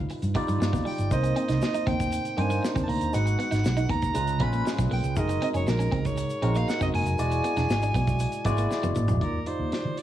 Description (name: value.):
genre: polished 1980s jazz-funk pop.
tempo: 118 BPM.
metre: 4/4.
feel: straight.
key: unclear.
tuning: A4 = 441 Hz.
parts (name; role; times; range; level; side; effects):
breathy soprano saxophone; melody; 0.0-10.0 s; Bb4 to Cb6; -31 LUFS; right 2 dB; cassette tape, plate reverb.
barky tine electric piano; accompaniment; 0.0-10.0 s; G3 to D5; -30 LUFS; left 1 dB; overdrive, wide subtle chorus, cassette tape, plate reverb.
vintage muted fingered electric bass; bass; 0.0-10.0 s; E1 to Eb3; -27 LUFS; right 1 dB; none.
clean electric guitar; riff; 0.1-9.0 s; G3 to Eb4; -33 LUFS; right 4 dB; analog chorus, cassette tape.
modern studio drum kit; drums; 0.1-10.0 s; hi-hat, kick drum, snare drum, toms; -31 LUFS; equal; cassette tape.
tube shaker; percussion; 0.1-9.2 s; none; -48 LUFS; left 8 dB; none.
room: light reverb.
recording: home recording on cassette, small room ambience.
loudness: -23 LUFS.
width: side -12 dB against mid.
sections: 0.0-9.2 A section.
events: drum fill 8.7-9.2.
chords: 0.0 G7b13; 1.1 Cm9; 3.1 Abm7; 4.2 Db7; 5.2 Gb69; 7.2 E9; 9.2 Ebmaj9.